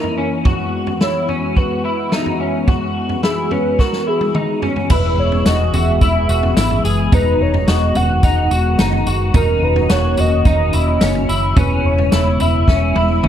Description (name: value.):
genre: dream pop.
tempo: 108 BPM.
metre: 4/4.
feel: straight.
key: E lydian.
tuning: A4 = 441 Hz.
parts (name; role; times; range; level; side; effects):
warm velvety synth lead; melody; 0.0-13.3 s; G#4 to F#5; -21 LUFS; right 1 dB; chorus, ping-pong delay.
warm analog pad; sustained chords; 0.0-13.3 s; C#3 to G#4; -22 LUFS; left 1 dB; chorus.
electric guitar at the edge of break-up; arpeggios; 0.0-13.3 s; C#4 to G#4; -21 LUFS; left 2 dB; ensemble chorus, ping-pong delay.
vintage drum kit; drums; 0.0-13.3 s; crash cymbal, kick drum, snare drum, tambourine, toms; -18 LUFS; equal; none.
vintage muted fingered electric bass; bass; 4.9-13.3 s; E1 to G#1; -18 LUFS; equal; none.
room: light reverb, studio reverb.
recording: none.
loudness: -13 LUFS.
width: side -10 dB against mid.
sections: 0.0-4.9 A section; 4.9-13.3 B section.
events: drum fill 3.8-4.9, 12.7-13.3.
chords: 0.5 Eadd9; 4.9 E; 7.1 G#m7/E; 9.3 D#m7/E; 11.6 E6.